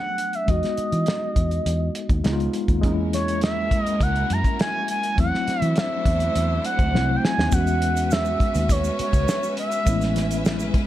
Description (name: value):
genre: lush 1970s-style soul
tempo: 102 BPM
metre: 4/4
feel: straight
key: E major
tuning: A4 = 441 Hz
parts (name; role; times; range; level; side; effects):
- expressive synth lead; melody; 0.0-10.4 s; C#5 to A#5; -25 LUFS; right 1 dB; chorus
- mellow tine electric piano; accompaniment; 0.0-10.9 s; F#3 to F#4; -27 LUFS; left 2 dB; fast stereo tremolo
- cloth-damped thuddy drum kit; drums; 0.2-10.9 s; hi-hat, kick drum, snare drum; -24 LUFS; equal; none
- vintage muted fingered electric bass; bass; 0.5-10.8 s; A1 to E3; -24 LUFS; equal; none
- clear studio string section; sustained chords; 2.8-10.9 s; G#3 to E5; -32 LUFS; right 1 dB; none
- tube shaker; percussion; 7.5-10.7 s; none; -38 LUFS; right 11 dB; none
room: studio ambience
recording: dark, warm production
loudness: -20 LUFS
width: side -13 dB against mid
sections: 0.0-7.5 A section; 7.5-10.9 B section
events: drum fill 6.9-7.5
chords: 0.5 Emaj7; 2.2 C#7; 2.8 F#9/E; 5.2 D9/E; 7.5 E69; 9.9 Amaj9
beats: | 0.48 1.07 1.66 2.25 | 2.83 3.42 4.01 4.59 | 5.18 5.77 6.35 6.94 | 7.53 8.11 8.70 9.28 | 9.87 10.45